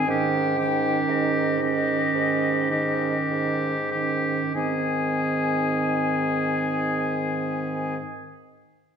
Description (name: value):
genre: classical, slow romantic movement for wind quintet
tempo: 45-61 BPM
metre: 4/4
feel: rubato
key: Ab major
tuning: A4 = 438 Hz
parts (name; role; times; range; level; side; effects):
- silver concert flute; melody; 0.0-8.0 s; Eb5 to Ab5; -29 LUFS; left 5 dB; none
- warm oboe; second line; 0.0-8.0 s; G4 to Ab4; -28 LUFS; left 2 dB; none
- mellow French horn; accompaniment; 0.0-8.0 s; Eb3; -30 LUFS; right 1 dB; none
- warm clarinet; accompaniment; 0.0-8.0 s; C4 to Db4; -28 LUFS; right 4 dB; none
- warm bassoon; bass; 0.1-8.0 s; Ab2; -29 LUFS; right 3 dB; none
room: wet scoring stage reverb, RT60 1.6 s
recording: minimal, uncompressed stereo recording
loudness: -22 LUFS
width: side -7 dB against mid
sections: 0.0-4.6 A section; 4.6-9.0 B section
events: slowing down 0.0-4.6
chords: 0.1 Eb7/Ab; 4.6 Ab